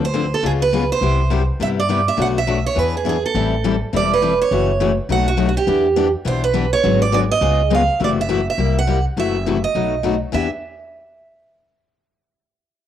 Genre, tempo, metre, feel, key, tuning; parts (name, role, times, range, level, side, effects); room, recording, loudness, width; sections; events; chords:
acoustic string swing (jazz manouche); 206 BPM; 4/4; swing 57% on 8ths; E minor; A4 = 440 Hz
picked steel-string acoustic guitar; melody; 0.0-10.5 s; F#4 to F#5; -19 LUFS; right 6 dB; cassette tape
picked steel-string acoustic guitar; accompaniment; 0.0-10.5 s; B2 to A4; -21 LUFS; left 8 dB; cassette tape
upright bass; bass; 0.0-10.5 s; E1 to G2; -21 LUFS; equal
moderate spring reverb, RT60 1.3 s, small room reverb; home recording on cassette; -15 LUFS; side -10 dB against mid
0.0-8.0 A section; 8.0-10.3 B section; 10.3-11.5 C section
0.4 C#7; 1.0 Cmaj7; 2.2 Bm7; 2.8 E7; 3.3 Am7; 4.5 F#m7; 5.1 B7; 5.7 Em7; 6.8 G#m7b5; 7.4 C#7; 8.0 F#m7b5; 8.6 C7; 9.2 F#m7b5; 9.8 B7; 10.3 Em7